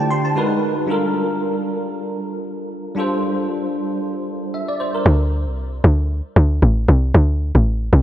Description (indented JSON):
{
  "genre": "amapiano",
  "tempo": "115 BPM",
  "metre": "4/4",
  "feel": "swing 55% on 16ths",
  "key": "D minor",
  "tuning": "A4 = 438 Hz",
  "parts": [
    { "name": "bell-like tine electric piano", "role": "accompaniment", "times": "0.0-5.2 s", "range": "D3 to C6", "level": "-20 LUFS", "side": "equal", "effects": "ensemble chorus" },
    { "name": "tight log drum bass", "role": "bass", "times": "5.1-8.0 s", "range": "A1 to D2", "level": "-14 LUFS", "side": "equal", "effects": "none" }
  ],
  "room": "moderate lush hall reverb, RT60 3.3 s",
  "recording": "dreamy mix soaked in reverb",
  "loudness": "-17 LUFS",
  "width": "side -12 dB against mid",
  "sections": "0.0-5.1 A section; 5.1-8.0 B section",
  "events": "drop 5.1-8.0",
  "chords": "0.4 G#m9; 0.9 Gm9; 5.1 D5"
}